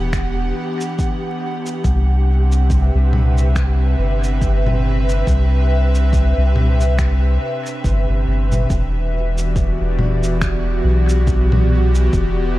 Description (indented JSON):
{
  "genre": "ambient dub",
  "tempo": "70 BPM",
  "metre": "4/4",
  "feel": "swing 58% on 16ths",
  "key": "E minor",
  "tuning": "A4 = 440 Hz",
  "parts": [
    { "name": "airy breathy pad", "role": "sustained chords", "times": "0.0-12.6 s", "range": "C3 to F#5", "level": "-22 LUFS", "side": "equal", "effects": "chorus" },
    { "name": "soft dub sub bass", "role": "bass", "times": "0.0-12.6 s", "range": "E1 to C2", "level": "-16 LUFS", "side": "equal", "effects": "none" },
    { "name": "wind-like tuned noise texture", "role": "texture", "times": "0.0-8.7 s", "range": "G4", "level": "-33 LUFS", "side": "right 1 dB", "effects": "built-in reverb" },
    { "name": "electronic finger snaps, shaker and congas", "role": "drums", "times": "0.1-12.3 s", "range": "none", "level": "-25 LUFS", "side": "left 1 dB", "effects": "studio ambience, dub echo" },
    { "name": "electronic kick drum", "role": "drums", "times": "0.1-12.3 s", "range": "none", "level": "-21 LUFS", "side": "equal", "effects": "studio ambience" }
  ],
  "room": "digital ambience",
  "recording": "vinyl crackle",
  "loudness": "-15 LUFS",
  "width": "side -17 dB against mid",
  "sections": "0.0-8.7 A section; 8.7-12.6 B section",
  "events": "none",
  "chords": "0.0 Em7; 1.8 Cmaj9; 8.7 Em7",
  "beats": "0.13 0.99 | 1.84 2.70 3.56 4.42 | 5.27 6.13 6.99 7.84 | 8.70 9.56 10.42 11.27 | 12.13"
}